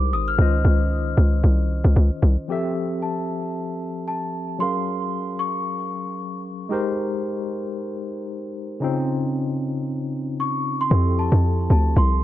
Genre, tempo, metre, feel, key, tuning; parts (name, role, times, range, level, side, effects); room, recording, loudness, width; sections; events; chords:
amapiano; 114 BPM; 4/4; swing 55% on 16ths; A4 = 439 Hz
large celesta; melody; 0.0-6.4, 10.4-12.2 s; A5 to F6; -27 LUFS; equal; tape echo
tine electric piano; accompaniment; 0.0-12.2 s; Db3 to F5; -26 LUFS; left 2 dB; medium stereo tremolo
hollow log drum bass; bass; 0.0-2.4, 10.9-12.2 s; Ab1 to F2; -17 LUFS; equal
studio reverb; -20 LUFS; side -13 dB against mid
0.0-2.5 A section; 2.5-10.9 B section; 10.9-12.2 C section
drop 0.0-2.5
0.4 Dbmaj9; 2.5 Fmaj9; 4.6 Gbmaj9; 6.7 Abmaj9; 8.8 Dbmaj9; 10.9 Fmaj9